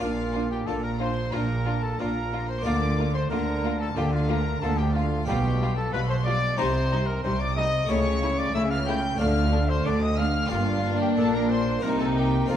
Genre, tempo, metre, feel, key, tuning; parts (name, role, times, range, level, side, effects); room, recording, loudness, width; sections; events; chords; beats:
classical, baroque-style concerto movement with solo episodes; 91 BPM; 4/4; straight; Bb major; A4 = 440 Hz
mellow trumpet; melody; 0.0-12.6 s; F4 to G5; -30 LUFS; left 1 dB
warm studio violin section; melody; 0.0-12.6 s; F5 to G6; -35 LUFS; left 3 dB
rich chamber violin section; second line; 0.0-12.6 s; D4 to F4; -34 LUFS; left 2 dB
dark chamber viola section; accompaniment; 0.0-12.6 s; G3 to D4; -31 LUFS; equal
harpsichord; accompaniment; 0.0-12.6 s; F2 to G4; -34 LUFS; left 1 dB
warm chamber cello section; bass; 0.0-12.6 s; F2 to D3; -29 LUFS; equal
warm studio double bass section; bass; 0.0-12.6 s; F1 to D2; -28 LUFS; right 2 dB
wet recital hall reverb, RT60 1.6 s; dark, warm production; -22 LUFS; side -10 dB against mid
0.0-12.6 A section
0.0 Bb; 2.6 Bb/D; 5.3 G7/B; 6.6 Cm; 7.9 A7/C#; 9.2 Dm; 10.5 Gm; 11.8 Cm7
| 0.02 0.68 1.33 1.99 | 2.65 3.31 3.96 4.62 | 5.28 5.93 6.59 7.24 | 7.90 8.55 9.20 9.86 | 10.52 11.18 11.83 12.49